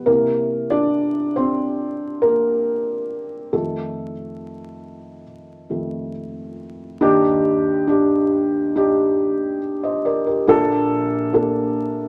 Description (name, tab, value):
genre	pop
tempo	69 BPM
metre	4/4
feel	straight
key	unclear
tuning	A4 = 441 Hz
part	felt-muted upright piano	solo	0.0-12.1 s	Bb1 to Eb5	-20 LUFS	equal	none
room	moderate studio reverb, RT60 0.7 s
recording	vinyl crackle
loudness	-20 LUFS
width	mono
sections	0.0-7.0 A section; 7.0-12.1 B section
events	felt piano solo 0.0-7.0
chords	0.1 C7; 3.5 F7; 7.0 Ebmaj7; 10.5 Bbmaj7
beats	| 0.07 0.93 1.80 2.66 | 3.53 4.40 5.27 6.14 | 7.02 7.89 8.76 9.62 | 10.48 11.34